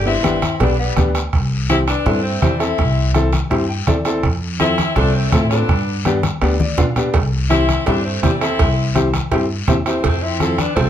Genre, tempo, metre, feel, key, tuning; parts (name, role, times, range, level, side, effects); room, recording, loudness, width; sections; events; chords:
latin, cumbia; 165 BPM; 4/4; straight; C major; A4 = 440 Hz
clear saxophone section; melody; 0.0-10.9 s; G3 to E4; -20 LUFS; left 2 dB
upright bass; bass; 0.0-10.9 s; G1 to B2; -20 LUFS; equal
clear upright piano; accompaniment; 0.1-10.9 s; B3 to G5; -20 LUFS; left 1 dB
bombo; percussion; 0.2-10.9 s; -21 LUFS; right 3 dB
congas; percussion; 0.2-10.9 s; -23 LUFS; left 3 dB
guiro; percussion; 0.2-10.9 s; -31 LUFS; left 8 dB
cowbell and timbales; percussion; 0.6-0.8, 7.1-10.9 s; -26 LUFS; right 7 dB
light reverb; -15 LUFS; side -10 dB against mid
0.0-1.3 A section; 1.3-10.9 B section
upright piano fill 3.5-4.2, 6.4-7.1; drum fill 6.2-7.1
0.0 G; 1.3 C; 4.2 F; 5.7 G; 7.1 C; 10.0 F